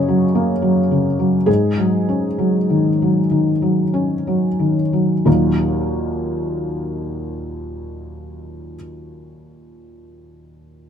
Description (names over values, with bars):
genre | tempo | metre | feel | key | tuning
neoclassical minimalist piano | 59-77 BPM | 4/4 | rubato | Eb minor | A4 = 440 Hz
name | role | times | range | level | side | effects
felt-muted upright piano | solo | 0.0-10.9 s | Eb2 to Eb5 | -16 LUFS | equal | none
room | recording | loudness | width
moderate studio reverb, RT60 0.9 s | none | -16 LUFS | side -8 dB against mid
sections
0.0-5.3 A section; 5.3-9.1 B section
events
slowing down 0.0-5.3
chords
0.0 Gb; 1.5 Ab7sus4; 5.3 Ebm